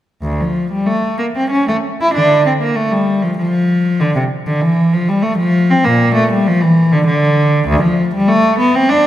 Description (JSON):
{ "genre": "classical, baroque-style suite movement for unaccompanied cello", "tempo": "98 BPM", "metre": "3/4", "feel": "rubato", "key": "D minor", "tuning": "A4 = 442 Hz", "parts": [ { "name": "rich cello", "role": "solo", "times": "0.2-9.1 s", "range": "D2 to E4", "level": "-11 LUFS", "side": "equal", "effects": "none" } ], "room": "wet concert hall reverb, RT60 2.2 s", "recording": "none", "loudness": "-12 LUFS", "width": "side -12 dB against mid", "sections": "0.2-9.1 A section", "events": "none", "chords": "none" }